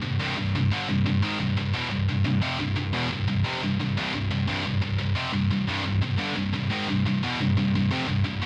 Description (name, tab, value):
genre	metal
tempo	88 BPM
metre	4/4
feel	straight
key	C major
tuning	A4 = 437 Hz
part	heavy high-gain guitar	solo	0.0-8.5 s	C2 to Eb3	-26 LUFS	equal	distortion
room	little or no reverb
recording	dry, close 1970s-style studio recording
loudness	-26 LUFS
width	mono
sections	0.0-8.5 A section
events	none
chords	0.0 C5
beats	0.38 1.06 | 1.74 2.43 3.11 3.79 | 4.48 5.16 5.85 6.53 | 7.22 7.90